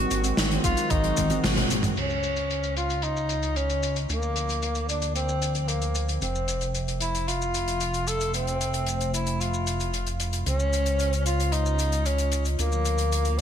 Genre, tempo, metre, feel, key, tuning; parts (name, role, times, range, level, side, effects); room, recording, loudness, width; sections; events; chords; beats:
synthwave; 113 BPM; 4/4; straight; A4 = 441 Hz
mellow tenor saxophone; melody; 0.0-13.4 s; Bb3 to A4; -28 LUFS; left 1 dB; vintage 12-bit sampler grit, digital delay
warm analog pad; sustained chords; 0.0-13.4 s; C3 to E5; -33 LUFS; equal; chorus, sidechain pumping
soft round pluck; arpeggios; 0.0-2.0 s; Eb3 to Eb4; -34 LUFS; right 4 dB; chorus, ping-pong delay
chorused synth bass; bass; 0.0-13.4 s; F1 to D2; -28 LUFS; equal
natural country drum kit; drums; 0.1-13.4 s; crash cymbal, hi-hat, shaker, snare drum, toms; -30 LUFS; left 2 dB; low-pass filter on hats, low-pass filter on toms, low-pass filter on cymbals, low-pass filter on snare, low-pass filter on perc, low-pass filter on room, gated reverb
electronic kick drum; drums; 0.6-1.3 s; -28 LUFS; equal; overdrive
moderate lush hall reverb, RT60 2.0 s; bright 1980s-style digital production; -23 LUFS; side -9 dB against mid
0.0-2.0 A section; 2.0-13.4 B section
drum fill 1.2-2.0; band accent 1.4; filter sweep on analog synth pad 2.0-13.4
0.0 Ab7; 2.0 Dbmaj7; 4.1 Bb/D; 6.2 Fmaj7; 10.5 Dbmaj7; 12.6 Bb/D
0.38 0.91 1.44 | 1.97 2.50 3.03 3.56 | 4.09 4.62 5.16 5.69 | 6.22 6.75 7.28 7.81 | 8.34 8.87 9.40 9.94 | 10.47 11.00 11.53 12.06 | 12.59 13.12